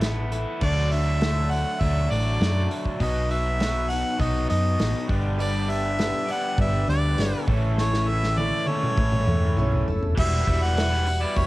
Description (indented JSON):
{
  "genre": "folk rock and heartland rock",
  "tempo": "100 BPM",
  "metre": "4/4",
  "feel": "straight",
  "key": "unclear",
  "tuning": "A4 = 440 Hz",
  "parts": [
    { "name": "picked twelve-string acoustic guitar", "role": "accompaniment", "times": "0.0-11.5 s", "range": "E2 to A4", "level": "-34 LUFS", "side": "left 6 dB", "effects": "cassette tape" },
    { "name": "raw garage guitar", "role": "riff", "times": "0.0-11.5 s", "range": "G2 to A4", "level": "-30 LUFS", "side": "equal", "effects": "overdrive, cassette tape" },
    { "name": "hollow-body short-scale fingered electric bass", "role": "bass", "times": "0.0-11.5 s", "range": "E1 to F#2", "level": "-24 LUFS", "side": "equal", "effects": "none" },
    { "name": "unplugged drum kit", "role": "drums", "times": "0.0-11.5 s", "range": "crash cymbal, hi-hat, kick drum, snare drum, toms", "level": "-28 LUFS", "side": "equal", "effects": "cassette tape" },
    { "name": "clear harmonica", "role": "melody", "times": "0.6-11.5 s", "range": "C#5 to F#5", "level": "-27 LUFS", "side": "equal", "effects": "cassette tape, tape echo" },
    { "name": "warm baby grand piano", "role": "accompaniment", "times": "5.4-11.5 s", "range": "E4 to C#6", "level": "-37 LUFS", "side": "right 7 dB", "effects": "cassette tape" },
    { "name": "tonewheel organ", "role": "sustained chords", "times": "5.4-11.5 s", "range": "C#3 to F#5", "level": "-36 LUFS", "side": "equal", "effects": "none" }
  ],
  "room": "little or no reverb",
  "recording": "home recording on cassette",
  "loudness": "-21 LUFS",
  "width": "side -18 dB against mid",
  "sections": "0.6-10.2 A section; 10.2-11.5 B section",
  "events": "drum fill 7.8-10.2",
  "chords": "0.0 Asus2; 0.6 D; 3.0 B; 5.1 G; 7.5 A; 10.2 Emadd9"
}